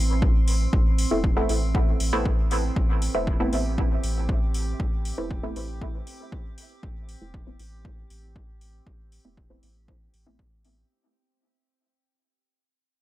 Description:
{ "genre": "dub techno", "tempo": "118 BPM", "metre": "4/4", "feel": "straight", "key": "A minor", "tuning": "A4 = 440 Hz", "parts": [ { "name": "warm sub bass", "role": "bass", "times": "0.0-10.8 s", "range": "E1 to A1", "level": "-28 LUFS", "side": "equal", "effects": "sidechain pumping" }, { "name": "drifting glass-harmonics texture", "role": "texture", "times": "0.0-10.9 s", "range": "C4 to C6", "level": "-36 LUFS", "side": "right 6 dB", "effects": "chorus, built-in reverb, sidechain pumping" }, { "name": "electronic kick drum", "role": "drums", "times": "0.2-10.5 s", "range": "none", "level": "-25 LUFS", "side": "equal", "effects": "none" }, { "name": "electronic hi-hat", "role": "drums", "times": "0.5-10.7 s", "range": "none", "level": "-35 LUFS", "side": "left 1 dB", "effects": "none" }, { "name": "filtered dub chord stab", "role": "stabs", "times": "1.1-10.9 s", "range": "A3 to E4", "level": "-29 LUFS", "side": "equal", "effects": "chorus, phaser, sidechain pumping, dub echo" } ], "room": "little or no reverb", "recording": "dry, gritty hardware recording", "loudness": "-22 LUFS", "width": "side -15 dB against mid", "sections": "0.0-10.9 A section", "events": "fade-out 0.0-10.9", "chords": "0.0 Amadd9" }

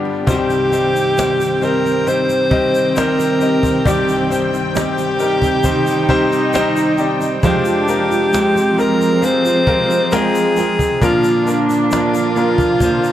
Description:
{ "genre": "pop ballad", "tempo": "67 BPM", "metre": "4/4", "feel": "straight", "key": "C minor", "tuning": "A4 = 440 Hz", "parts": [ { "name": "clear concert grand piano", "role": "accompaniment", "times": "0.0-13.1 s", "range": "C2 to G5", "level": "-19 LUFS", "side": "left 4 dB", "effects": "none" }, { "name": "warm studio string section", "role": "sustained chords", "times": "0.0-13.1 s", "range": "D3 to G5", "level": "-23 LUFS", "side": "right 1 dB", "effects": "none" }, { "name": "fingerpicked steel-string acoustic guitar", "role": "arpeggios", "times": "0.0-13.1 s", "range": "G2 to Bb4", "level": "-24 LUFS", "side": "right 6 dB", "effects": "digital delay" }, { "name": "clear alto saxophone", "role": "melody", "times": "0.3-13.1 s", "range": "F4 to C5", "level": "-17 LUFS", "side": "equal", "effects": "none" }, { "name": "dark chamber cello section", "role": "second line", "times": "0.3-13.1 s", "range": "Bb3 to Eb4", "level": "-22 LUFS", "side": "right 1 dB", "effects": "none" }, { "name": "cajon", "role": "drums", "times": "0.3-13.0 s", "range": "none", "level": "-20 LUFS", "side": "right 1 dB", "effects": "none" }, { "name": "egg shaker", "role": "percussion", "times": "0.3-13.1 s", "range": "none", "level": "-35 LUFS", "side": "left 5 dB", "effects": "none" } ], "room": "light reverb", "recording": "dark, warm production", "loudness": "-13 LUFS", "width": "side -12 dB against mid", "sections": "0.3-13.1 A section", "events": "break 0.0", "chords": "0.3 Cm; 7.4 Fmadd9; 11.0 Bb" }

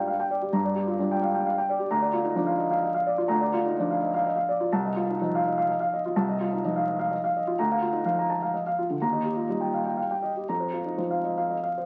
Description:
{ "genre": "classical, piano waltz", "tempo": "113-137 BPM", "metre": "3/4", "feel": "rubato", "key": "Bb major", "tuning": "A4 = 440 Hz", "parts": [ { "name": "dark upright piano", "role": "solo", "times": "0.0-11.9 s", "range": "C2 to Bb5", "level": "-26 LUFS", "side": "equal", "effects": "none" } ], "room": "moderate stone room reverb, RT60 1.3 s", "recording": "very old 78 rpm record, vinyl crackle", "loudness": "-26 LUFS", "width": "mono", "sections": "0.0-11.9 A section", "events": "none", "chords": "0.0 G5; 1.9 Bb/D; 4.7 F7/C; 7.6 Bb/D; 9.0 Eb; 10.5 Fsus4" }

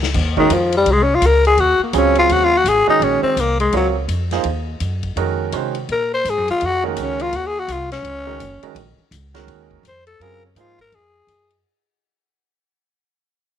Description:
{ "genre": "modal jazz", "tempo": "167 BPM", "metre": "4/4", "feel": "swing 63% on 8ths", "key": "Eb dorian", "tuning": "A4 = 440 Hz", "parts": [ { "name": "upright bass", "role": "bass", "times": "0.0-11.6 s", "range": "Gb1 to C3", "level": "-22 LUFS", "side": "equal", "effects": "none" }, { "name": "vintage drum kit", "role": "drums", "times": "0.0-11.6 s", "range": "crash cymbal, hi-hat, kick drum, ride cymbal, snare drum", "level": "-29 LUFS", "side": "left 5 dB", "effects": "none" }, { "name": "growling tenor saxophone", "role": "melody", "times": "0.4-11.6 s", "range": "Eb3 to C5", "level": "-16 LUFS", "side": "left 3 dB", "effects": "none" }, { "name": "clear grand piano", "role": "accompaniment", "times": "0.4-10.8 s", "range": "Db3 to Db5", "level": "-21 LUFS", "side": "right 15 dB", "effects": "none" } ], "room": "light reverb", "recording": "1960s-style stereo", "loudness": "-15 LUFS", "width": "side -9 dB against mid", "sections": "0.1-11.6 A section", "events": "fade-out 0.1-11.6; tenor saxophone solo 0.1-11.6", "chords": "0.1 Ebm11" }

